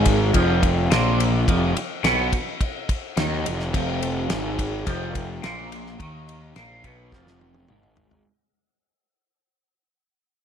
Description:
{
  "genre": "psychedelic rock",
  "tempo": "106 BPM",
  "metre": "4/4",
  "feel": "straight",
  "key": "F minor",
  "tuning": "A4 = 439 Hz",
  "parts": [
    { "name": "twelve-string electric guitar", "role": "riff", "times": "0.0-8.2 s", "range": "F2 to Eb3", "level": "-24 LUFS", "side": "equal", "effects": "phaser, double-tracked left and right" },
    { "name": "fuzz picked electric bass", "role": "bass", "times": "0.0-8.2 s", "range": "F1 to Eb2", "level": "-25 LUFS", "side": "equal", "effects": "overdrive" },
    { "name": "damped 70s drum kit", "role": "drums", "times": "0.1-8.2 s", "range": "kick drum, ride cymbal, snare drum, toms", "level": "-25 LUFS", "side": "left 1 dB", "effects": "none" }
  ],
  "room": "moderate lush hall reverb, RT60 1.7 s, studio reverb",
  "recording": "dreamy mix soaked in reverb",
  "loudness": "-20 LUFS",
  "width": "side -8 dB against mid",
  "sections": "0.0-8.3 A section",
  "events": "fade-out 0.0-8.3; drum fill 7.1-8.3",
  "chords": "0.0 Fm"
}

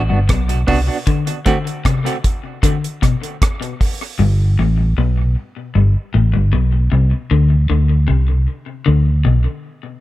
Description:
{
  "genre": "dub reggae",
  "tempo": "77 BPM",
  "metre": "4/4",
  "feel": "straight",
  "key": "G major",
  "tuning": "A4 = 441 Hz",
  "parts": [
    { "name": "vintage muted fingered electric bass", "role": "bass", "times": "0.0-9.5 s", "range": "G1 to D2", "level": "-14 LUFS", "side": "equal", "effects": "none" },
    { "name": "semi-hollow electric guitar", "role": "accompaniment", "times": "0.1-1.6 s", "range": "A3 to F#4", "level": "-22 LUFS", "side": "right 4 dB", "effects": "tremolo, tape echo" },
    { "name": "electric guitar at the edge of break-up", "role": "riff", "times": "0.1-9.4 s", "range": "G2 to D3", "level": "-20 LUFS", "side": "left 5 dB", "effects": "tape echo" },
    { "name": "deep reggae drum kit", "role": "drums", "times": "0.3-4.0 s", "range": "hi-hat, kick drum, rim click", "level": "-18 LUFS", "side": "equal", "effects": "none" }
  ],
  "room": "little or no reverb",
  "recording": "echo-heavy mix",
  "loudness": "-14 LUFS",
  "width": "side -16 dB against mid",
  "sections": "0.0-10.0 A section",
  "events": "break 1.1-4.2; part muted 4.2-10.0",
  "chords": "0.0 Gmaj7; 1.1 N.C.; 4.2 G; 7.3 N.C."
}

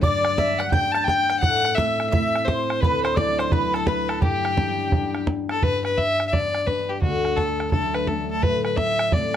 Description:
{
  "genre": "celtic folk, Celtic hornpipe",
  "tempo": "171 BPM",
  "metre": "4/4",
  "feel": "swing 63% on 8ths",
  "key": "G major",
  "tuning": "A4 = 440 Hz",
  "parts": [
    { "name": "rich fiddle", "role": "melody", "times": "0.0-9.4 s", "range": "F#4 to A5", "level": "-23 LUFS", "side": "left 2 dB", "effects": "none" },
    { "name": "mandolin", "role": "second line", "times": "0.0-5.2 s", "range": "G4 to A5", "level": "-28 LUFS", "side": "right 4 dB", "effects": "none" },
    { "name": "tin whistle", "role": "second line", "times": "0.0-5.3 s", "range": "G5 to G6", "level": "-30 LUFS", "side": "left 5 dB", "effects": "none" },
    { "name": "concert harp", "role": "accompaniment", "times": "0.0-9.4 s", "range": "D2 to E4", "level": "-26 LUFS", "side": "left 1 dB", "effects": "none" },
    { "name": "bodhran", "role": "percussion", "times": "0.0-9.4 s", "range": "none", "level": "-23 LUFS", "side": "right 2 dB", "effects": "none" }
  ],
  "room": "light reverb",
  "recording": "close, detailed microphones",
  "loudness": "-20 LUFS",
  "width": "side -10 dB against mid",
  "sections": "0.0-5.6 A section; 5.6-9.4 B section",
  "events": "none",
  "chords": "0.0 G; 1.4 Am; 2.8 Dadd9; 4.2 G; 7.0 D; 8.4 Am7"
}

